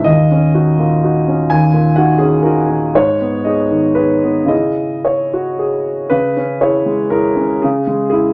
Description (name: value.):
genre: neoclassical minimalist piano.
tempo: 109-128 BPM.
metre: 3/4.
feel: rubato.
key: C# dorian.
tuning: A4 = 440 Hz.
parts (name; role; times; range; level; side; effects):
warm concert grand piano; solo; 0.0-8.3 s; D#2 to G#5; -14 LUFS; equal; none.
room: light reverb.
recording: none.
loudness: -14 LUFS.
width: mono.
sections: 0.0-6.1 A section; 6.1-8.3 A section.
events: none.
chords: 0.1 D#m7; 3.0 G#m; 4.5 C#m.